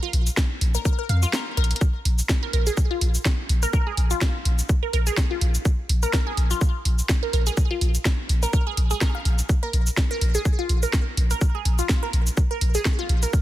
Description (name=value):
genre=minimal techno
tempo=125 BPM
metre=4/4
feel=swing 56% on 16ths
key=unclear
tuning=A4 = 440 Hz
part: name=resonant blip pluck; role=riff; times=0.0-13.3 s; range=F4 to F5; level=-28 LUFS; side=right 1 dB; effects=phaser, sidechain pumping, digital delay
part: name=punchy sub bass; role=bass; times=0.1-13.3 s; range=Bb1 to F2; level=-20 LUFS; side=equal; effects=tube saturation, sidechain pumping
part: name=garage drum kit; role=drums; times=0.1-13.4 s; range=cabasa, hi-hat, snare drum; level=-28 LUFS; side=equal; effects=overdrive
part: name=electronic kick drum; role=drums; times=0.4-13.4 s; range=none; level=-21 LUFS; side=equal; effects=none
room=digital ambience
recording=dense, heavily limited modern master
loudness=-20 LUFS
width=side -14 dB against mid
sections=0.0-13.4 A section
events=kick drops out 1.3-1.8; drum fill 1.6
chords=0.0 Bb5